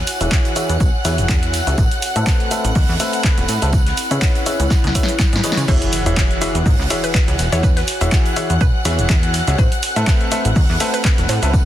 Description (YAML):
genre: piano house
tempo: 123 BPM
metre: 4/4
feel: swing 55% on 16ths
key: E major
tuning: A4 = 441 Hz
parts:
  - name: warm symphonic violin section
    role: sustained chords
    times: 0.0-11.7 s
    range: F#5 to F#6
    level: -26 LUFS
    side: left 2 dB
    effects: sidechain pumping
  - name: plucky analog bass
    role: bass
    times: 0.0-11.7 s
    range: E1 to C#3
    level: -19 LUFS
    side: equal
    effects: sidechain pumping
  - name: warbly tape-like pad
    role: texture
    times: 0.0-11.7 s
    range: C4 to B5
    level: -29 LUFS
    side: right 1 dB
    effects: chorus, built-in reverb, sidechain pumping
  - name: huge arena drum kit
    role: drums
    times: 0.1-11.7 s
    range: hi-hat, snare drum, tambourine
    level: -30 LUFS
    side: right 3 dB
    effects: sidechain pumping on hats, high-pass filter on hats, soft clipping on snare, high-pass filter on snare, sidechain pumping on perc, high-pass filter on perc, high-pass filter on room
  - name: punchy analog drum machine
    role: drums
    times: 0.1-11.6 s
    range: crash cymbal, handclaps, hi-hat, shaker, snare drum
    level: -23 LUFS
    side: equal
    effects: none
  - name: tambourine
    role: percussion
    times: 0.1-5.7 s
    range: none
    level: -36 LUFS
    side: right 7 dB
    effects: none
  - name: bright grand piano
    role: riff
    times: 0.2-11.5 s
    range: E3 to E5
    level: -23 LUFS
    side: left 1 dB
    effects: sidechain pumping, low-pass filter, tape echo
  - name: electronic kick drum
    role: drums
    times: 0.3-11.6 s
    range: none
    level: -16 LUFS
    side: equal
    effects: none
  - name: hollow square pluck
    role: melody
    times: 5.7-11.6 s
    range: B4 to C#5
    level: -29 LUFS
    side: equal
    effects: chorus, tape echo
  - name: impact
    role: sound effects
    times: 5.7-7.6 s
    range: none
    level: -27 LUFS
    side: equal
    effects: none
room: little or no reverb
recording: dense, heavily limited modern master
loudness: -14 LUFS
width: side -12 dB against mid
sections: 0.0-5.7 A section; 5.7-11.7 B section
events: drum fill 4.7-5.7; drop 5.7-11.7; impact 5.7-7.6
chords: 0.0 E69; 1.8 Amadd9; 3.7 C#m7; 5.7 E69; 9.6 Amadd9